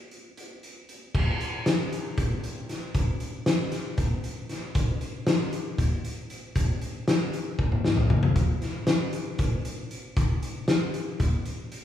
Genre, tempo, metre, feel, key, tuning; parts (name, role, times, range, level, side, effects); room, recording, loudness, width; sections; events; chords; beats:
progressive instrumental, progressive; 233 BPM (eighths); 7/8; straight
oversized low-tuned drum kit; drums; 0.1-11.8 s; crash cymbal, hi-hat, kick drum, snare drum, toms; -25 LUFS; left 1 dB
moderate recital hall reverb, RT60 1.4 s; recorded in a church or concert hall, small room reverb; -25 LUFS; side -11 dB against mid
0.0-1.1 A section; 1.1-11.8 B section
drum fill 7.6-8.4
0.11 0.37 0.63 0.89 | 1.15 1.41 1.66 1.92 2.18 2.44 2.70 | 2.96 3.21 3.47 3.73 3.99 4.24 4.50 | 4.76 5.02 5.27 5.53 5.79 6.05 6.30 | 6.56 6.82 7.08 7.33 7.59 7.85 8.11 | 8.37 8.62 8.88 9.14 9.40 9.65 9.91 | 10.17 10.43 10.69 10.95 11.20 11.46 11.72